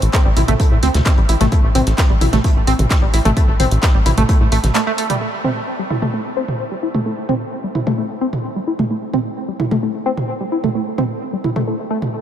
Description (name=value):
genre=driving peak-time techno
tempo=130 BPM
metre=4/4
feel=straight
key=A minor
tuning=A4 = 440 Hz
part: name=tight sequencer bass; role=bass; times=0.0-4.7 s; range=A1 to A2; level=-16 LUFS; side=equal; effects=sidechain pumping
part: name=techno drum kit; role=drums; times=0.0-12.1 s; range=crash cymbal, handclaps, hi-hat, toms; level=-22 LUFS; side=right 1 dB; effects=sidechain pumping on hats, low-pass filter on hats, sidechain pumping on toms, low-pass filter on toms, low-pass filter on snare, sidechain pumping on cymbals, low-pass filter on cymbals, low-pass filter on room
part: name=vintage brush drum kit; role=drums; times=0.0-5.1 s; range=hi-hat, snare drum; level=-32 LUFS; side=left 2 dB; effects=none
part: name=electronic kick drum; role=drums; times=0.1-4.4 s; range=none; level=-15 LUFS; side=equal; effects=none
part: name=tight sequenced synth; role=riff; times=0.3-12.0 s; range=G3 to E4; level=-20 LUFS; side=equal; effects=chorus, sidechain pumping, diffuse ambient delay
room=light reverb, digital ambience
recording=none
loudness=-15 LUFS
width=side -10 dB against mid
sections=0.0-5.2 A section; 5.2-12.2 B section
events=drop 0.0-5.2; break 4.8-5.2; filter sweep on drum 5.2-12.2; filter sweep on synth arpeggio sound 5.2-12.2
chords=0.0 N.C.; 5.2 Am